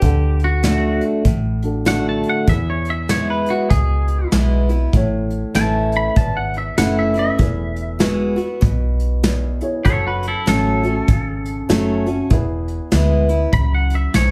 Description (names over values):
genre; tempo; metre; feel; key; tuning
honky-tonk and classic country; 98 BPM; 4/4; swing 61% on 8ths; unclear; A4 = 437 Hz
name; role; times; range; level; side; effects
twangy electric guitar; melody; 0.0-14.3 s; E4 to B5; -26 LUFS; equal; tape echo
dark upright piano; accompaniment; 0.0-14.3 s; D4 to F#5; -32 LUFS; equal; none
picked acoustic archtop guitar; accompaniment; 0.0-14.3 s; E2 to F#4; -24 LUFS; equal; none
vintage muted fingered electric bass; bass; 0.0-14.3 s; E1 to E2; -22 LUFS; equal; none
soft brush drum kit; drums; 0.0-14.3 s; hi-hat, kick drum, snare drum; -20 LUFS; equal; none
room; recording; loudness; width
wet studio ambience, RT60 0.5 s; heard from further back in the room; -18 LUFS; mono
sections
0.0-14.3 A section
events
clean electric guitar solo 0.0-14.3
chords
0.0 D; 2.5 E; 4.9 A; 7.4 Eadd9; 9.9 F#m; 12.3 E